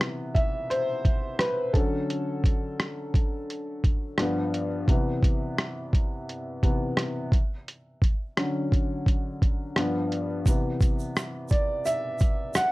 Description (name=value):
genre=lo-fi hip hop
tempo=86 BPM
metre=4/4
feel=swing 57% on 16ths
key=unclear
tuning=A4 = 441 Hz
part: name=warm upright piano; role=accompaniment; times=0.0-12.7 s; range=G2 to F#5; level=-28 LUFS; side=left 1 dB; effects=none
part: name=lo-fi sampler-style drum kit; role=drums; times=0.0-12.7 s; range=hi-hat, kick drum, rim click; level=-24 LUFS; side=equal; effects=overdrive
part: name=tube shaker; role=percussion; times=10.5-12.7 s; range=none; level=-43 LUFS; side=right 8 dB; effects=none
room=light reverb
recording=none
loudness=-24 LUFS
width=side -20 dB against mid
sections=0.0-12.7 A section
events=upright piano solo 0.0-12.7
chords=0.0 Cmaj7; 1.7 Dmaj7; 4.2 G7; 4.9 Cmaj7; 7.3 Dmaj7; 9.8 G7; 10.5 Cmaj7